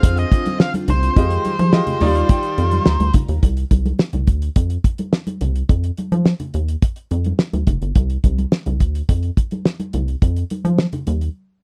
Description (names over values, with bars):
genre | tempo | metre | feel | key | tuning
early-eighties boogie funk | 106 BPM | 4/4 | straight | C minor | A4 = 441 Hz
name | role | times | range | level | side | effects
octave-fuzz lead guitar | melody | 0.0-3.1 s | C5 to F5 | -25 LUFS | equal | distortion, slapback echo
bright baby grand piano | accompaniment | 0.0-3.4 s | G3 to C6 | -26 LUFS | equal | none
string machine, violins | sustained chords | 0.0-3.4 s | D3 to G4 | -32 LUFS | equal | none
rubbery square bass | bass | 0.0-11.3 s | F1 to F3 | -21 LUFS | equal | none
damped 70s drum kit | drums | 0.0-11.3 s | hi-hat, kick drum, snare drum | -17 LUFS | equal | none
congas | percussion | 0.3-11.2 s | none | -29 LUFS | equal | none
room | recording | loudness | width
little or no reverb | dry, close 1970s-style studio recording | -18 LUFS | mono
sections
0.0-3.4 A section; 3.4-11.6 B section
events
grand piano fill 1.7-3.4; break 11.4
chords
0.0 Dm7b5; 1.2 Fm9; 2.0 Ebmaj9; 3.4 N.C.; 4.3 Csus24; 5.7 N.C.; 6.5 Ebmaj9; 8.0 N.C.; 8.8 Csus24; 10.2 N.C.